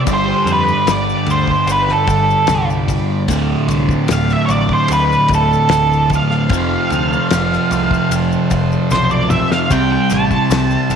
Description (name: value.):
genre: psychedelic rock.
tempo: 75 BPM.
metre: 4/4.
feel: straight.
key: D dorian.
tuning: A4 = 439 Hz.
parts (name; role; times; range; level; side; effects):
combo organ; sustained chords; 0.0-11.0 s; E3 to B5; -26 LUFS; right 11 dB; none.
fuzz guitar; riff; 0.0-11.0 s; D2 to C4; -16 LUFS; equal; distortion, phaser.
octave-fuzz lead guitar; melody; 0.1-11.0 s; A4 to A5; -17 LUFS; right 1 dB; distortion, slapback echo.
growling picked electric bass; bass; 0.1-11.0 s; D1 to F2; -22 LUFS; equal; overdrive.
damped 70s drum kit; drums; 0.1-11.0 s; kick drum, ride cymbal, snare drum, toms; -23 LUFS; left 4 dB; none.
maracas; percussion; 0.1-11.0 s; none; -33 LUFS; left 16 dB; none.
room: light reverb, small room ambience.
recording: 1960s-style stereo with parts hard left and right.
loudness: -12 LUFS.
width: side -7 dB against mid.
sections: 0.0-11.0 A section.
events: lead electric guitar solo 0.0-11.0; drum fill 8.9-9.7.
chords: 0.1 G; 3.3 Dm; 6.5 F; 9.7 C.